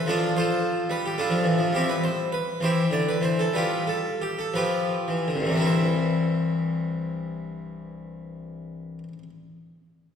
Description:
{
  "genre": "classical, baroque-style suite movement for harpsichord",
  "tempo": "52-73 BPM (dotted quarters)",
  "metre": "12/8",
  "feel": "rubato",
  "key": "C major",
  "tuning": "A4 = 440 Hz",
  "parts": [
    { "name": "harpsichord", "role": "solo", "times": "0.0-9.3 s", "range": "C2 to D5", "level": "-23 LUFS", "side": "equal", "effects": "none" }
  ],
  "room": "wet concert hall reverb, RT60 2.0 s",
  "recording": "heard from further back in the room",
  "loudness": "-22 LUFS",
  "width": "side -7 dB against mid",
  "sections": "0.0-5.7 A section; 5.7-10.1 B section",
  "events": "slowing down 0.0-5.7",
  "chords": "0.1 Dm/F; 1.7 C/G; 3.5 G7; 5.7 C"
}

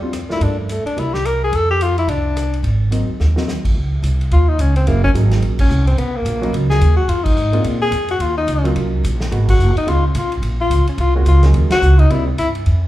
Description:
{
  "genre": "jazz, small-group swing and bop",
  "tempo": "215 BPM",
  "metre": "4/4",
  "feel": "swing 61% on 8ths",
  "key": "Db major from 3.8 s",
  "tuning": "A4 = 440 Hz",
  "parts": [
    { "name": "warm baby grand piano", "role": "accompaniment", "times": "0.0-12.3 s", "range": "Gb3 to Ab4", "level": "-24 LUFS", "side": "right 1 dB", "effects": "none" },
    { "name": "upright bass", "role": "bass", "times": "0.0-12.9 s", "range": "Gb1 to Bb2", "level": "-16 LUFS", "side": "equal", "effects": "none" },
    { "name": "vintage drum kit", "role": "drums", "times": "0.1-12.7 s", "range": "crash cymbal, hi-hat, kick drum, ride cymbal, rim click, snare drum", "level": "-24 LUFS", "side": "equal", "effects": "none" },
    { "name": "breathy tenor saxophone", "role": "melody", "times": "0.3-12.5 s", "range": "F3 to Bb4", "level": "-19 LUFS", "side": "left 2 dB", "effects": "none" }
  ],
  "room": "moderate large studio reverb, RT60 1.1 s",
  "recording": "band playing live in one room",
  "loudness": "-14 LUFS",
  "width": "side -15 dB against mid",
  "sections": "0.0-3.8 A section; 3.8-12.7 B section",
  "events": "drum fill 3.2; band accent 5.6, 7.2, 9.5, 11.7",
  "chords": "0.4 Gm7; 1.0 C7; 1.5 F5; 2.6 Ab7; 3.8 Dbmaj7sus2/C; 4.9 Gb7; 6.0 Cbmaj7; 7.1 Bb7; 8.2 Ebm7; 9.3 Abm7; 9.9 Db7; 10.4 Gbmaj7; 11.5 Ebm7; 12.1 C7"
}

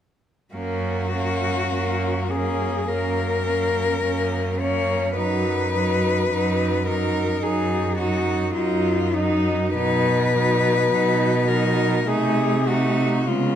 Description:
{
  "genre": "classical, lyrical piece for cello ensemble",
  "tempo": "47-54 BPM",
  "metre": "4/4",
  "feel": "rubato",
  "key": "F# major",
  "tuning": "A4 = 439 Hz",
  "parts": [
    { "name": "rich cello", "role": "melody", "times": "0.5-13.6 s", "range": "D#4 to C#5", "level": "-23 LUFS", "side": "left 6 dB", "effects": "none" },
    { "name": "rich cello", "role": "accompaniment", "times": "0.5-13.6 s", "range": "F#3 to A#3", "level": "-27 LUFS", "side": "left 1 dB", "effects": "none" },
    { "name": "clear cello", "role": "bass", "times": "0.5-13.6 s", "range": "F#2 to C#3", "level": "-25 LUFS", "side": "right 2 dB", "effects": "none" },
    { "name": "rich cello", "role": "second line", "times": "0.6-13.6 s", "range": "B3 to D#4", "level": "-27 LUFS", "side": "right 6 dB", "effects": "none" }
  ],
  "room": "wet recital hall reverb, RT60 1.5 s",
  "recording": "none",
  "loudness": "-19 LUFS",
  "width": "side -9 dB against mid",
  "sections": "0.5-13.6 A section",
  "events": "none",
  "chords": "0.5 F#; 5.2 B/F#; 9.8 B; 12.1 Cdim7"
}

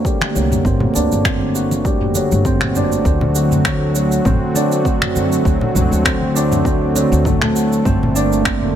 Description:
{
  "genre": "organic downtempo",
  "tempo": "100 BPM",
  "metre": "4/4",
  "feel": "swing 55% on 16ths",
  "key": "G harmonic minor",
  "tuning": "A4 = 440 Hz",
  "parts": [
    { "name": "warm analog pad", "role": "sustained chords", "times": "0.0-8.8 s", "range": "D3 to F#4", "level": "-19 LUFS", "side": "right 1 dB", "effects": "chorus, sidechain pumping" },
    { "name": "Celtic harp", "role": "arpeggios", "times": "0.0-8.8 s", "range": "F#3 to F#4", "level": "-20 LUFS", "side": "equal", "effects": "low-pass filter, tape echo" },
    { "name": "electronic kick drum", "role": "drums", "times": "0.0-8.6 s", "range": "none", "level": "-20 LUFS", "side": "equal", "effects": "overdrive" },
    { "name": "organic electronic drum kit", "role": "drums", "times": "0.1-8.7 s", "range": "finger snaps, shaker, toms", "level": "-21 LUFS", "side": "right 1 dB", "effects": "none" },
    { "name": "congas", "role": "percussion", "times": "0.2-8.1 s", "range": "none", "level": "-25 LUFS", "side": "left 1 dB", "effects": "none" },
    { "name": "upright bass", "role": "bass", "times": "0.4-8.8 s", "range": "G1 to F#2", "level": "-20 LUFS", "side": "equal", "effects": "tube saturation" }
  ],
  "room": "light reverb, small room ambience",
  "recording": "none",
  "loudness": "-14 LUFS",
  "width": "side -10 dB against mid",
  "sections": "0.0-8.8 A section",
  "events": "filter sweep on harp 0.0-8.8",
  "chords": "0.0 Gmadd9; 3.1 D7; 7.9 Gmadd9"
}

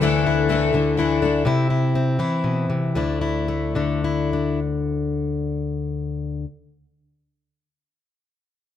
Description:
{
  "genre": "folk",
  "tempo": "99-124 BPM",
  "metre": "3/4",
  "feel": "straight",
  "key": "unclear",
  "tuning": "A4 = 440 Hz",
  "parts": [
    { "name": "fingerpicked plugged-in steel-string acoustic guitar", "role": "accompaniment", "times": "0.0-6.4 s", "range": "D2 to E4", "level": "-20 LUFS", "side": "left 2 dB", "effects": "none" },
    { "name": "picked twelve-string acoustic guitar", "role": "accompaniment", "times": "0.0-1.5 s", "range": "D3 to A4", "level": "-22 LUFS", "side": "left 6 dB", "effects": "none" }
  ],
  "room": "moderate large studio reverb, RT60 1.3 s",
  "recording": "none",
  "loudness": "-20 LUFS",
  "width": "side -10 dB against mid",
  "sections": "0.0-4.6 A section",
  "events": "slowing down 1.5-4.6",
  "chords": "0.0 Dsus2; 1.5 C; 3.0 Dsus2"
}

